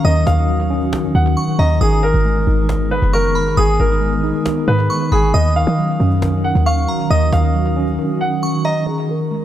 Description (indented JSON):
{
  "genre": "hip hop, trap",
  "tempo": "136 BPM",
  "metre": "4/4",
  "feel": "half-time",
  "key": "Eb minor",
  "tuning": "A4 = 441 Hz",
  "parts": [
    { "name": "bright concert grand piano", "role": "melody", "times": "0.0-9.4 s", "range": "Ab4 to Gb5", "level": "-20 LUFS", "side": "right 1 dB", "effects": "low-pass filter, analog delay" },
    { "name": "glassy synth bell", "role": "second line", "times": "0.0-8.9 s", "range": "Bb5 to Eb6", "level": "-26 LUFS", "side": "equal", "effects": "chorus, analog delay" },
    { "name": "mellow tine electric piano", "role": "accompaniment", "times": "0.0-9.4 s", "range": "Eb3 to Eb4", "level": "-20 LUFS", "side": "equal", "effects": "medium stereo tremolo, low-pass filter, analog delay" },
    { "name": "glassy FM pad", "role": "sustained chords", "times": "0.0-9.4 s", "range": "Eb3 to Ab4", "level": "-25 LUFS", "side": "right 1 dB", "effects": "ensemble chorus, built-in reverb, phaser, low-pass filter" },
    { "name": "short 808-style bass", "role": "bass", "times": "0.0-8.0 s", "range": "Gb1 to Gb3", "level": "-16 LUFS", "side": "equal", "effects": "none" },
    { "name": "cajon", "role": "drums", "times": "0.0-7.9 s", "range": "none", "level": "-33 LUFS", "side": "equal", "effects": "analog delay" }
  ],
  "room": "light reverb, small room ambience",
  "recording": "echo-heavy mix",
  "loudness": "-14 LUFS",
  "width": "side -11 dB against mid",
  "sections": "0.0-8.9 A section",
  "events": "break 8.0-8.9",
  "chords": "0.0 Ebm7; 1.8 Abm; 5.3 Ebm7; 8.9 Abm",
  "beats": "| 0.04 0.49 0.93 1.37 | 1.81 2.25 2.69 3.13 | 3.58 4.02 4.46 4.90 | 5.34 5.78 6.22 6.66 | 7.10 7.54 7.99 8.43 | 8.87 9.31"
}